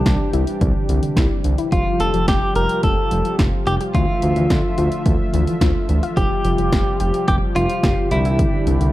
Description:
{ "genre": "synth-pop", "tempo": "108 BPM", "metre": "4/4", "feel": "straight", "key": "F major", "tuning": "A4 = 440 Hz", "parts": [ { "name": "direct-recorded clean electric guitar", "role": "melody", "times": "0.0-8.9 s", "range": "D4 to Bb4", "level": "-22 LUFS", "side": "equal", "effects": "harmonic tremolo, slapback echo" }, { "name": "warm analog pad", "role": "sustained chords", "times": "0.0-8.9 s", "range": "C3 to E5", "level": "-25 LUFS", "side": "equal", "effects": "chorus" }, { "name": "smooth synth bass", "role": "bass", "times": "0.0-8.9 s", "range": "F1 to D2", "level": "-20 LUFS", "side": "equal", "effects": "none" }, { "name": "punchy analog drum machine", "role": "drums", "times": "0.1-8.9 s", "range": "hi-hat, kick drum, snare drum", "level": "-20 LUFS", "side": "equal", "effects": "none" }, { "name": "soft round pluck", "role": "arpeggios", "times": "0.3-8.9 s", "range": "D3 to G4", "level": "-26 LUFS", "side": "left 2 dB", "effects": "chorus, slapback echo" } ], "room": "light reverb, digital ambience", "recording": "dark, warm production", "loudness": "-16 LUFS", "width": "side -16 dB against mid", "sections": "0.0-8.9 A section", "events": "none", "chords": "0.0 Cadd9; 1.7 Fsus2; 3.9 Dmadd9; 6.2 Fsus2; 8.1 Cadd9" }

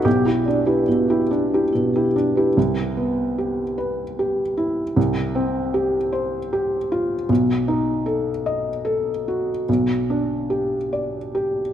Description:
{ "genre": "neoclassical piano and strings", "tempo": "71-79 BPM", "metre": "3/4", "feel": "rubato", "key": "C major", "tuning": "A4 = 439 Hz", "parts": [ { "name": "felt-muted upright piano", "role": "accompaniment", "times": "0.0-11.7 s", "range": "B1 to D#5", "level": "-19 LUFS", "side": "equal", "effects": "none" }, { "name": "vibraphone with soft mallets", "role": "arpeggios", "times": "0.0-2.5 s", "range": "E4 to D5", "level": "-29 LUFS", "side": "right 2 dB", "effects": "tape echo" } ], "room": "moderate concert hall reverb, RT60 1.8 s", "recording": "none", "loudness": "-19 LUFS", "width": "side -10 dB against mid", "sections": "0.0-2.6 A section; 2.6-11.7 B section", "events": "none", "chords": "0.1 Em7/B; 2.6 Cmaj7; 5.0 Fsus2/C; 7.3 B7; 9.7 Em7/B (rootless)" }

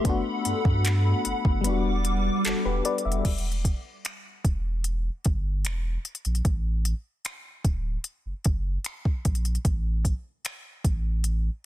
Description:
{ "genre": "contemporary R&B", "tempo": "75 BPM", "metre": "4/4", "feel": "straight", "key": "E minor", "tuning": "A4 = 440 Hz", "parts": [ { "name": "FM electric piano with tremolo", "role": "accompaniment", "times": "0.0-3.4 s", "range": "G3 to E5", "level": "-28 LUFS", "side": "left 6 dB", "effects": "none" }, { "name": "hollow soft pad", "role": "sustained chords", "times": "0.0-3.2 s", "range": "G3 to D6", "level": "-30 LUFS", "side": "equal", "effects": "ensemble chorus" }, { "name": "smooth R&B drum kit", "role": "drums", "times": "0.0-11.4 s", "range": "crash cymbal, finger snaps, handclaps, hi-hat, kick drum", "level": "-26 LUFS", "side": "equal", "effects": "overdrive" }, { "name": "warm sub bass", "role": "bass", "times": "0.1-11.5 s", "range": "D1 to G2", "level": "-26 LUFS", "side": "equal", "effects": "none" } ], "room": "digital ambience", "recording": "dense, heavily limited modern master", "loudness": "-24 LUFS", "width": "side -13 dB against mid", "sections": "0.0-3.2 A section; 3.2-11.7 B section", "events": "kick muted 1.6-3.2", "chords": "0.1 Gmaj9; 1.6 Em9; 3.2 Em; 5.7 N.C.; 6.5 Asus4; 9.7 N.C." }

